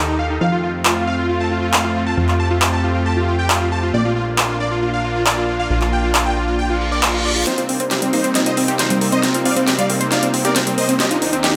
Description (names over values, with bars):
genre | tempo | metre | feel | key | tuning
uplifting trance | 136 BPM | 4/4 | straight | C dorian | A4 = 440 Hz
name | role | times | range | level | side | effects
supersaw chords | melody | 0.0-11.5 s | C4 to A5 | -22 LUFS | equal | low-pass filter, dub echo
supersaw pad | sustained chords | 0.0-11.6 s | Eb2 to A4 | -26 LUFS | equal | none
plucky analog bass | bass | 0.0-7.4 s | Bb1 to F2 | -24 LUFS | equal | tube saturation
big-room dance drum kit | drums | 0.9-11.5 s | handclaps, hi-hat, snare drum | -21 LUFS | equal | high-pass filter on snare, high-pass filter on hats, high-pass filter on room
reverse cymbal and riser | sound effects | 6.8-11.6 s | none | -29 LUFS | equal | none
analog pluck | arpeggios | 7.5-11.5 s | G3 to C5 | -23 LUFS | equal | chorus, dub echo
room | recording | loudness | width
moderate digital room reverb, RT60 1.2 s | none | -18 LUFS | mono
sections
0.0-7.5 A section; 7.5-11.6 B section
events
reverse cymbal 6.8-7.5; build-up 7.5-11.6; drum fill 7.5-11.6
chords
0.4 F; 3.9 Bb; 7.5 Cm7; 11.0 Eb